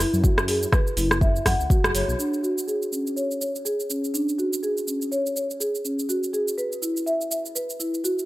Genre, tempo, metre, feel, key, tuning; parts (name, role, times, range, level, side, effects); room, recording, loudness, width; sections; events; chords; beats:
afro house; 123 BPM; 4/4; swing 58% on 16ths; A4 = 439 Hz
marimba with soft mallets; arpeggios; 0.0-8.2 s; C#4 to F#5; -24 LUFS; equal; sidechain pumping, low-pass filter, tape echo
dark detuned saw bass; bass; 0.0-2.1 s; F#1 to F#2; -26 LUFS; equal; sidechain pumping
afro-pop drum kit; drums; 0.0-8.3 s; hi-hat, rim click, shaker; -27 LUFS; right 1 dB
electronic kick drum; drums; 0.2-1.8 s; -20 LUFS; equal; overdrive
little or no reverb; dry, gritty hardware recording; -22 LUFS; side -17 dB against mid
0.0-2.2 A section; 2.2-8.3 B section
band accent 1.8; filter sweep on marimba 2.2-8.3
0.0 N.C.; 2.2 D; 6.1 F#sus2
| 0.24 0.72 1.21 1.70 | 2.19 2.68 3.16 3.65 | 4.14 4.63 5.12 5.60 | 6.09 6.58 7.07 7.55 | 8.04